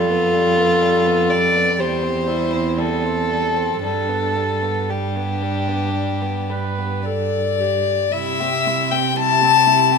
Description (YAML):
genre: classical, slow romantic movement for string quartet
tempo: 52-63 BPM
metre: 4/4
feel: rubato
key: C major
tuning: A4 = 440 Hz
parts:
  - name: warm violin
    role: melody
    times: 0.0-10.0 s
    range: G3 to A5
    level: -21 LUFS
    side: left 9 dB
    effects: none
  - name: warm violin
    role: second line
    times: 0.0-10.0 s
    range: E4 to D5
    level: -22 LUFS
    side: equal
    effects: none
  - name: dark viola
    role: accompaniment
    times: 0.0-10.0 s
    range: G3 to B4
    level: -24 LUFS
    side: equal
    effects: none
  - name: warm cello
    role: bass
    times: 0.0-10.0 s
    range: E2 to C3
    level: -23 LUFS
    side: right 6 dB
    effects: none
room: moderate recital hall reverb, RT60 1.4 s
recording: minimal, uncompressed stereo recording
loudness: -16 LUFS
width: side -5 dB against mid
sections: 0.0-8.1 A section; 8.1-10.0 B section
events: none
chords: 0.0 G7/F; 1.8 C/E; 3.8 G; 8.1 C